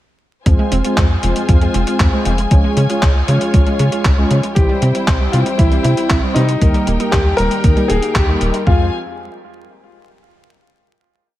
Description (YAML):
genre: italo disco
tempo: 117 BPM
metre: 4/4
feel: straight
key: F minor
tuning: A4 = 441 Hz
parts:
  - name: rich studio string section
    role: sustained chords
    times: 0.5-8.9 s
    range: C4 to Ab5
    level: -24 LUFS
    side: left 2 dB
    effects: none
  - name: wide unison pluck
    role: arpeggios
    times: 0.5-8.9 s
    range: Eb3 to G4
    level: -24 LUFS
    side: right 3 dB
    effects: ping-pong delay
  - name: mellow synth brass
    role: stabs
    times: 0.5-8.9 s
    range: G3 to Db5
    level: -20 LUFS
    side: equal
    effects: chorus
  - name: tight sequencer bass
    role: bass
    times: 0.5-8.9 s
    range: Eb1 to Db3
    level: -16 LUFS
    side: equal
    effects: tube saturation
  - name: clean 12-bit digital drum machine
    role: drums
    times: 0.5-8.6 s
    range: handclaps, hi-hat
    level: -22 LUFS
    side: equal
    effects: gated reverb
  - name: electronic kick drum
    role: drums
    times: 0.5-8.8 s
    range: none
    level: -14 LUFS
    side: equal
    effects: none
  - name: warm baby grand piano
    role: melody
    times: 4.5-8.9 s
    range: Eb4 to Bb4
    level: -20 LUFS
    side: left 1 dB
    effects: ping-pong delay
room: little or no reverb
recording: vinyl crackle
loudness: -12 LUFS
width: side -14 dB against mid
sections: 0.5-8.7 verse; 8.7-10.7 final chord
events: band accent 8.2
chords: 0.5 Fm; 2.5 Db; 4.6 C; 6.6 Eb; 8.7 Fm